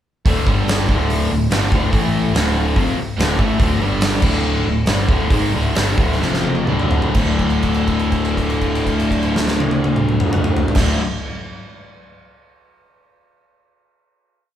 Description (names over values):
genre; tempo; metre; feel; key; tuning
hard rock; 122-144 BPM; 4/4; straight; D minor; A4 = 439 Hz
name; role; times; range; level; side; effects
cranked stack guitar; riff; 0.3-11.0 s; D2 to A3; -25 LUFS; right 5 dB; overdrive
distorted electric guitar; riff; 0.3-11.0 s; D2 to A3; -21 LUFS; left 4 dB; distortion
tight distorted guitar; riff; 0.3-11.0 s; D2 to A3; -26 LUFS; equal; distortion
picked electric bass; bass; 0.3-11.0 s; D1 to A1; -22 LUFS; equal; none
huge arena drum kit; drums; 0.3-10.9 s; crash cymbal, hi-hat, kick drum, snare drum, toms; -19 LUFS; equal; none
room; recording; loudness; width
moderate large studio reverb, RT60 1.1 s; band playing live in one room; -15 LUFS; side -10 dB against mid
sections
0.3-7.2 riff; 7.2-11.1 final chord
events
slowing down 3.6-7.2; drum fill 6.2-7.2; held note 7.2-10.8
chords
0.3 D5; 0.5 G5; 0.9 D5; 1.9 A5; 2.3 Dm; 3.8 G5; 4.2 D5; 6.2 F5; 6.7 D5